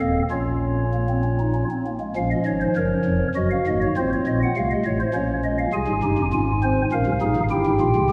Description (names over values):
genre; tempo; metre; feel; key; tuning
classical, baroque-style 4-part fugue for pipe organ; 100 BPM; 3/4; straight; Bb minor; A4 = 440 Hz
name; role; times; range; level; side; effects
pipe organ, stopped flute; solo; 0.0-8.1 s; Eb1 to Ab5; -22 LUFS; equal; none
room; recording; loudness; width
wet church reverb, RT60 2.7 s; none; -22 LUFS; mono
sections
0.0-2.2 A section; 2.2-8.1 B section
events
none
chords
0.3 Bbm; 3.4 Ebm/Gb; 4.0 F7/A; 5.2 Bbm; 5.7 Fm; 6.9 Bbm; 7.5 C7/G (rootless)